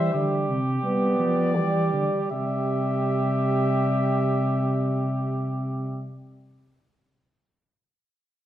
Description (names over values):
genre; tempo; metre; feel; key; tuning
classical, imitative canzona for brass ensemble; 77-88 BPM; 4/4; straight; C major; A4 = 442 Hz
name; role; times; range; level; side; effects
dark trumpet; melody; 0.0-6.1 s; D5 to E5; -31 LUFS; left 8 dB; none
clear flugelhorn; second line; 0.0-6.1 s; G4 to C5; -31 LUFS; right 3 dB; none
clear euphonium; accompaniment; 0.0-6.1 s; G3 to B3; -27 LUFS; right 2 dB; none
mellow tuba; bass; 0.0-6.1 s; C3 to G3; -25 LUFS; right 1 dB; none
room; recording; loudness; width
wet recital hall reverb, RT60 1.4 s; dark, warm production; -22 LUFS; side -12 dB against mid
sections
0.0-2.3 A section; 2.3-5.4 B section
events
slowing down 0.0-2.3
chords
0.0 C; 0.8 G; 2.3 C